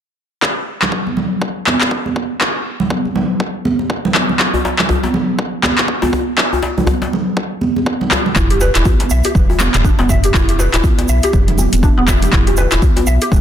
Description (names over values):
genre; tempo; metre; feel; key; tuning
afro house; 121 BPM; 4/4; swing 58% on 16ths; E minor; A4 = 441 Hz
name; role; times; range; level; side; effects
deep house drum kit; drums; 0.4-13.3 s; handclaps, hi-hat, toms; -17 LUFS; equal; overdrive
electronic kick drum; drums; 0.4-13.4 s; none; -17 LUFS; equal; overdrive, high-pass filter on kick, high-pass filter on room
congas; percussion; 0.8-13.4 s; none; -19 LUFS; right 2 dB; none
djembe; percussion; 4.5-13.4 s; none; -21 LUFS; left 3 dB; none
mallet-like synth pluck; arpeggios; 8.4-13.3 s; B3 to E5; -19 LUFS; equal; ensemble chorus, sidechain pumping, dub echo
round analog bass; bass; 8.4-13.4 s; E1 to B1; -16 LUFS; equal; sidechain pumping
tube shaker; percussion; 8.4-13.4 s; none; -27 LUFS; right 6 dB; none
room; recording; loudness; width
light reverb, digital ambience; dense, heavily limited modern master; -13 LUFS; side -9 dB against mid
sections
0.4-8.4 A section; 8.4-13.4 B section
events
none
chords
0.4 N.C.; 8.4 E5